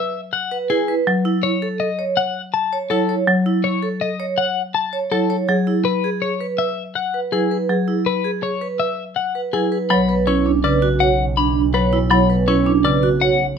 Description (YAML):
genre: classical, minimalist pattern music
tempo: 163 BPM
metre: 6/4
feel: straight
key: B minor from 9.9 s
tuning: A4 = 440 Hz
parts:
  - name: twelve-string electric guitar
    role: melody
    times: 0.0-13.5 s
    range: G#4 to B5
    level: -21 LUFS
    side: left 8 dB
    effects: none
  - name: vibraphone with medium hard mallets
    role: arpeggios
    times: 0.5-13.5 s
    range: D4 to C#5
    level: -21 LUFS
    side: right 6 dB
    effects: none
  - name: marimba with hard mallets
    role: accompaniment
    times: 1.1-13.1 s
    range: C#3 to C#4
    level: -21 LUFS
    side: left 1 dB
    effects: none
  - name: warm studio double bass section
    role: bass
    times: 9.9-13.6 s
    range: B1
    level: -23 LUFS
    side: right 1 dB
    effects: none
room: light reverb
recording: none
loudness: -16 LUFS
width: side -7 dB against mid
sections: 0.0-9.9 A section; 9.9-13.6 B section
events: none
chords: 0.0 C#m7 (rootless); 1.1 F#m7; 5.5 C#m7/F# (rootless); 9.9 Bmadd9